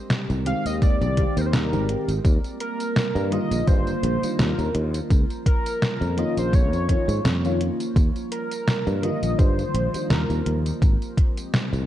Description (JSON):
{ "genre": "vaporwave", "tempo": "84 BPM", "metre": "4/4", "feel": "swing 55% on 16ths", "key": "Eb major", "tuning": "A4 = 440 Hz", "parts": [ { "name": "warbly tape-like pad", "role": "sustained chords", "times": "0.0-11.9 s", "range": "F3 to G4", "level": "-32 LUFS", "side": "right 4 dB", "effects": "chorus, built-in reverb" }, { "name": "detuned 8-bit digital drum machine", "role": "drums", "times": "0.1-11.9 s", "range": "hi-hat, snare drum, tambourine", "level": "-26 LUFS", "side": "equal", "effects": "overdrive, vintage 12-bit sampler grit, gated reverb" }, { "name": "sustaining fretless electric bass", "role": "bass", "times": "0.3-11.9 s", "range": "Ab1 to Ab2", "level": "-24 LUFS", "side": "equal", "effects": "none" }, { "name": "warm velvety synth lead", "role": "melody", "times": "0.5-10.7 s", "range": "Bb4 to F5", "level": "-29 LUFS", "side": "equal", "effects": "chorus, vintage 12-bit sampler grit, tape echo" }, { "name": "FM electric piano with soft pad layer", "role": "accompaniment", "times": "0.5-10.8 s", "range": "D3 to G4", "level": "-29 LUFS", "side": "left 2 dB", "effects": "analog chorus, analog delay" }, { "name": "electronic kick drum", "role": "drums", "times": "0.8-11.3 s", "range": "none", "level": "-19 LUFS", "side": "equal", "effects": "overdrive, vintage 12-bit sampler grit" } ], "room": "light reverb, digital ambience", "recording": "cassette tape", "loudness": "-20 LUFS", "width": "side -12 dB against mid", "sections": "0.0-11.9 A section", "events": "none", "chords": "0.0 Abmaj7; 2.2 Ebmaj9; 5.1 Db69; 8.0 Ebmaj9; 10.8 Abmaj7", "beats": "0.10 0.82 1.53 | 2.25 2.96 3.67 4.39 | 5.10 5.82 6.53 7.25 | 7.96 8.68 9.39 10.10 | 10.82 11.53" }